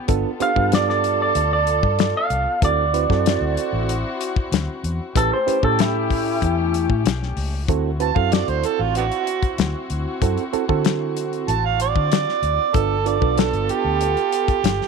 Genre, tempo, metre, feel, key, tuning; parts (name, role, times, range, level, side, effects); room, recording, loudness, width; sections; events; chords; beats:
straight-eighth soul blues; 95 BPM; 4/4; straight; D mixolydian; A4 = 443 Hz
dark chamber string section; sustained chords; 0.0-14.9 s; A3 to A4; -30 LUFS; left 3 dB
reed electric piano; accompaniment; 0.1-14.1 s; B3 to B4; -24 LUFS; right 16 dB
vintage muted fingered electric bass; bass; 0.1-14.8 s; G1 to D3; -24 LUFS; left 1 dB
damped 70s drum kit; drums; 0.1-14.9 s; hi-hat, kick drum, snare drum; -22 LUFS; left 5 dB
electric guitar through a small old amp; melody; 0.4-7.0 s; E4 to F5; -21 LUFS; right 1 dB
overdriven harmonica; second line; 8.0-14.9 s; B3 to A5; -21 LUFS; right 11 dB; tape echo
light reverb, small room ambience; 1960s-style stereo; -18 LUFS; side -5 dB against mid
0.0-7.7 A section; 7.7-14.9 A section
clean electric guitar solo 0.0-7.7; harmonica solo 7.7-14.9
0.1 G9; 2.6 D9; 5.2 A9; 7.7 D9; 12.7 G9
| 0.09 0.72 1.35 1.99 | 2.62 3.25 3.89 4.52 | 5.15 5.79 6.42 7.05 | 7.68 8.32 8.95 9.58 | 10.21 10.85 11.48 12.11 | 12.75 13.38 14.01 14.64